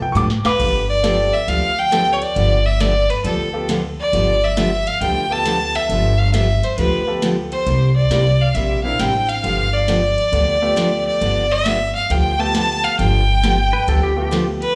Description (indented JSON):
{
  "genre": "country, western swing",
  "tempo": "136 BPM",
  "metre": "4/4",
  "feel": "swing 67% on 8ths",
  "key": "G mixolydian",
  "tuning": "A4 = 440 Hz",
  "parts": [
    { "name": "clear upright piano", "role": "accompaniment", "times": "0.0-14.7 s", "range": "A3 to D6", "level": "-27 LUFS", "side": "equal", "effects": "slapback echo" },
    { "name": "upright bass", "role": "bass", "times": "0.0-14.6 s", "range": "G1 to A2", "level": "-22 LUFS", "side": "equal", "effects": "none" },
    { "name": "picked steel-string acoustic guitar", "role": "accompaniment", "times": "0.2-14.4 s", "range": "C3 to G4", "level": "-26 LUFS", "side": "equal", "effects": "none" },
    { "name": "soft vintage rhythm box", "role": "drums", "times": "0.2-14.7 s", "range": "crash cymbal, hi-hat, kick drum, ride cymbal, snare drum", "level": "-31 LUFS", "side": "equal", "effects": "none" },
    { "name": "clear fiddle", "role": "melody", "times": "0.4-14.8 s", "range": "A4 to A5", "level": "-21 LUFS", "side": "equal", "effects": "none" },
    { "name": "pedal steel guitar", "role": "second line", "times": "13.7-14.5 s", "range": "G4 to B4", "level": "-26 LUFS", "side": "equal", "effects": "slapback echo" }
  ],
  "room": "light reverb",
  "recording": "live gig heard through the venue's PA, club reverb",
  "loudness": "-17 LUFS",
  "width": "mono",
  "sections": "0.6-14.8 A section",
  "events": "drum fill 0.2-0.6",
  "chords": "0.0 G9; 7.7 C9; 9.4 G9",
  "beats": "0.15 | 0.59 1.03 1.48 1.92 | 2.36 2.80 3.24 3.69 | 4.13 4.57 5.01 5.45 | 5.89 6.34 6.78 7.22 | 7.66 8.11 8.55 8.99 | 9.44 9.88 10.32 10.77 | 11.21 11.65 12.10 12.54 | 12.99 13.43 13.88 14.32"
}